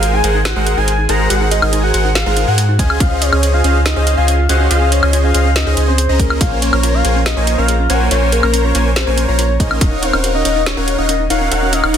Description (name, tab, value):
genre	future bass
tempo	141 BPM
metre	4/4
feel	half-time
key	Db major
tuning	A4 = 441 Hz
part	soft octave-layered synth lead	melody	0.0-12.0 s	Bb4 to Bb5	-18 LUFS	left 1 dB	chorus, phaser, sidechain pumping, ping-pong delay
part	thumb-piano-like synth pluck	arpeggios	0.0-12.0 s	Db4 to Ab4	-26 LUFS	left 4 dB	chorus, sidechain pumping, tape echo
part	supersaw chords	riff	0.0-12.0 s	Ab3 to Bb5	-18 LUFS	right 1 dB	cassette tape, sidechain pumping
part	saturated sub bass	bass	0.0-12.0 s	Eb1 to Ab2	-16 LUFS	equal	sidechain pumping
part	trap drum kit	drums	0.0-12.0 s	hi-hat, snare drum, woodblock	-18 LUFS	equal	small room ambience
part	electronic kick drum	drums	2.8-3.1, 6.2-6.5, 9.6-9.9 s	none	-15 LUFS	equal	small room ambience
room	light reverb, digital ambience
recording	dense, heavily limited modern master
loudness	-12 LUFS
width	side -9 dB against mid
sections	0.0-12.0 A section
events	none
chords	0.0 Ab7; 2.8 Dbmaj7; 6.4 Bbm7; 9.8 Ebm7